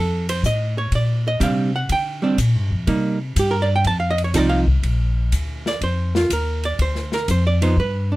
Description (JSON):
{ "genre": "jazz, small-group swing and bop", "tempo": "123 BPM", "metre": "4/4", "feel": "swing 68% on 8ths", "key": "Bb major", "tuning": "A4 = 440 Hz", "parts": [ { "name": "archtop guitar, miked and amplified", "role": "accompaniment", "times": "0.0-8.2 s", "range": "F3 to A5", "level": "-21 LUFS", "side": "right 2 dB", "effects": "none" }, { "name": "upright bass", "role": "bass", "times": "0.0-8.2 s", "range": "Bb1 to D3", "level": "-20 LUFS", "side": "equal", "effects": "none" }, { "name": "open jazz drum kit", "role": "drums", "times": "0.3-7.9 s", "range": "hi-hat, kick drum, ride cymbal, snare drum", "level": "-28 LUFS", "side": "left 2 dB", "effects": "none" } ], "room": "little or no reverb", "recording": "close, detailed microphones", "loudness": "-18 LUFS", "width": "side -18 dB against mid", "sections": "0.0-4.8 A section; 4.8-8.2 A section", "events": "none", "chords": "0.0 F; 0.9 Bb69; 2.9 Cm7; 3.9 F7; 4.8 Bb; 6.8 Dm7" }